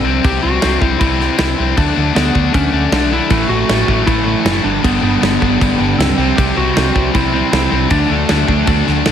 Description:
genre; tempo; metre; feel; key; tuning
hard rock; 156 BPM; 4/4; straight; unclear; A4 = 439 Hz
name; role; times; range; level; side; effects
lightly driven lead guitar; melody; 0.0-8.8 s; A3 to G4; -19 LUFS; right 2 dB; none
hollow soft pad; sustained chords; 0.0-9.1 s; G3 to D6; -30 LUFS; right 2 dB; chorus
cranked stack guitar; riff; 0.0-9.1 s; G2 to D4; -17 LUFS; left 8 dB; overdrive
hollow-body short-scale fingered electric bass; bass; 0.0-9.1 s; F#1 to D2; -19 LUFS; equal; none
big rock drum kit; drums; 0.2-9.1 s; crash cymbal, kick drum, snare drum; -18 LUFS; equal; none
sludgy distorted guitar; riff; 3.3-9.1 s; G2 to D4; -20 LUFS; right 14 dB; overdrive
room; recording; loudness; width
light reverb, small room ambience; none; -12 LUFS; side -9 dB against mid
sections
0.0-9.1 A section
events
none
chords
0.0 C; 1.8 D; 3.3 A; 4.6 G; 6.2 C; 7.9 D

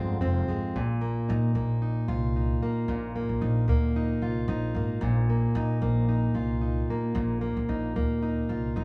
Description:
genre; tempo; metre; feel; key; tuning
acoustic pop; 112 BPM; 4/4; swing 55% on 16ths; unclear; A4 = 439 Hz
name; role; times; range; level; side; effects
fingerpicked plugged-in steel-string acoustic guitar; accompaniment; 0.0-8.8 s; F2 to F4; -30 LUFS; equal; none
upright bass; bass; 0.0-8.8 s; F1 to Bb2; -31 LUFS; equal; none
room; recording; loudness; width
moderate studio reverb, RT60 0.9 s; band playing live in one room, small room ambience; -27 LUFS; mono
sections
0.0-8.8 A section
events
none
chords
0.0 Fm; 0.7 Bbsus4

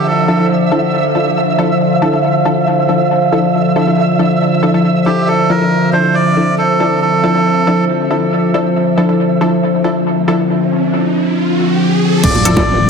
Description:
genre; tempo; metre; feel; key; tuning
deep dubstep; 138 BPM; 4/4; half-time; D minor; A4 = 444 Hz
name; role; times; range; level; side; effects
melodica; melody; 0.0-0.5, 5.1-7.8, 12.2-12.9 s; G4 to D5; -18 LUFS; right 2 dB; dub echo
overtone-sweeping drone; sustained chords; 0.0-12.9 s; D3 to F4; -14 LUFS; left 1 dB; chorus, built-in reverb
flickering grainy texture; texture; 0.0-10.5 s; E5; -21 LUFS; right 5 dB; built-in reverb
filtered dub chord stab; stabs; 0.3-12.7 s; F3 to A4; -17 LUFS; left 1 dB; chorus, dub echo
riser and sub drop; sound effects; 10.0-12.9 s; none; -20 LUFS; right 1 dB; none
wobble bass; bass; 12.2-12.9 s; D1; -14 LUFS; equal; chorus
deep house drum kit; drums; 12.2-12.5 s; crash cymbal, hi-hat; -19 LUFS; left 2 dB; none
electronic kick drum; drums; 12.2-12.7 s; none; -17 LUFS; right 1 dB; none
bongos; percussion; 12.4-12.7 s; none; -19 LUFS; right 3 dB; none
room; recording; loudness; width
moderate digital room reverb, RT60 1.2 s; dense, heavily limited modern master; -10 LUFS; side -5 dB against mid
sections
0.0-12.2 A section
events
riser 10.0-12.2; impact 12.2-12.9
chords
0.0 Dmadd9

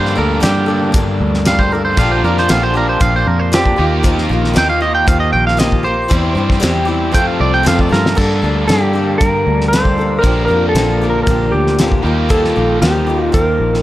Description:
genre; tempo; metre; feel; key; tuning
folk rock and heartland rock; 116 BPM; 4/4; straight; G minor; A4 = 439 Hz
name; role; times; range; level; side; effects
twangy electric guitar; second line; 0.0-8.2 s; G4 to G5; -17 LUFS; right 2 dB; none
picked swing-style acoustic guitar; accompaniment; 0.0-13.8 s; G2 to A4; -20 LUFS; left 3 dB; none
crunchy overdriven guitar; riff; 0.0-13.8 s; F2 to Bb4; -19 LUFS; right 1 dB; none
fingered electric bass; bass; 0.0-13.8 s; Bb1 to G2; -18 LUFS; equal; none
cloth-damped thuddy drum kit; drums; 0.1-13.8 s; crash cymbal, hi-hat, kick drum, snare drum; -17 LUFS; equal; none
clean lap steel guitar; melody; 8.2-13.8 s; G4 to C5; -16 LUFS; equal; tape echo
room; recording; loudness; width
light reverb, studio reverb; none; -11 LUFS; side -15 dB against mid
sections
0.0-8.2 A section; 8.2-13.8 B section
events
clean electric guitar solo 0.0-8.2; drum fill 7.9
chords
0.0 Gmadd9; 2.0 Bb6; 3.8 Ebadd9; 6.1 C/E; 7.1 F; 8.2 Gmadd9; 10.2 Bb6; 12.0 Ebadd9

